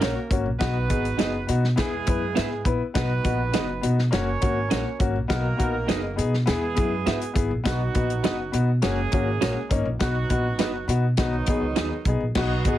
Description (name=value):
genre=uptempo 1960s-style soul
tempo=102 BPM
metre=4/4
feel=straight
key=B major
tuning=A4 = 440 Hz
part: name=mellow horn section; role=second line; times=0.0-12.8 s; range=D#3 to C#5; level=-30 LUFS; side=right 5 dB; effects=none
part: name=warm upright piano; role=accompaniment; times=0.0-12.8 s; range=A#3 to B4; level=-27 LUFS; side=left 5 dB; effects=none
part: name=electric guitar through a small old amp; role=stabs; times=0.0-11.9 s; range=C#4 to E5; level=-28 LUFS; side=right 8 dB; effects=none
part: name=upright bass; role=bass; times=0.0-12.8 s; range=F#1 to B2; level=-26 LUFS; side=equal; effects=none
part: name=warm soul drum kit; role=drums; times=0.0-12.8 s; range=crash cymbal, hi-hat, kick drum, snare drum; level=-26 LUFS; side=equal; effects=none
part: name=tonewheel organ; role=sustained chords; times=12.4-12.8 s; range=B4 to D#6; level=-34 LUFS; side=right 2 dB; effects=slow rotary speaker, chorus vibrato
room=light reverb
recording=heavily compressed radio sound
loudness=-21 LUFS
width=side -13 dB against mid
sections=0.0-12.4 A section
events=none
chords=0.0 F#; 0.6 B; 1.8 E; 3.0 B; 4.1 F#; 5.3 B; 6.5 E; 7.7 B; 8.8 F#; 10.0 B